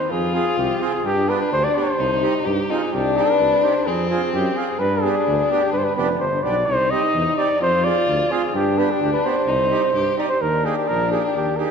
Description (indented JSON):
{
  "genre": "klezmer",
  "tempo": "128 BPM",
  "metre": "2/4",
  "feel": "straight",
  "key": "C harmonic minor",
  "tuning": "A4 = 440 Hz",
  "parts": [
    { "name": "mellow cornet", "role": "melody", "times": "0.0-11.7 s", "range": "G4 to Eb5", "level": "-21 LUFS", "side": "equal", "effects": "none" },
    { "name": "dark violin", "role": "second line", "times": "0.0-11.7 s", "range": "C4 to G4", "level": "-22 LUFS", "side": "left 4 dB", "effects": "none" },
    { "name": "warm tuba", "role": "bass", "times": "0.1-11.6 s", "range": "F1 to G2", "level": "-26 LUFS", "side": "right 1 dB", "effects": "none" },
    { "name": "accordion", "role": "accompaniment", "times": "0.3-11.7 s", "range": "Bb3 to Ab4", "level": "-27 LUFS", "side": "right 5 dB", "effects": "none" }
  ],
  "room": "wet concert hall reverb, RT60 2.4 s",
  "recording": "recorded in a church or concert hall",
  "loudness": "-17 LUFS",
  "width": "side -6 dB against mid",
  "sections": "0.0-2.9 A section; 2.9-10.4 A section; 10.4-11.7 B section",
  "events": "none",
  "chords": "0.1 Fm; 1.0 G; 2.0 Cm; 3.9 Fm; 4.8 G; 6.7 Cm; 7.6 Fm; 8.5 G; 9.5 Cm; 10.4 Eb",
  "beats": "| 0.10 0.57 | 1.04 1.51 | 1.99 2.46 | 2.93 3.40 | 3.86 4.33 | 4.80 5.27 | 5.74 6.20 | 6.67 7.14 | 7.60 8.07 | 8.54 9.01 | 9.47 9.94 | 10.41 10.88 | 11.35"
}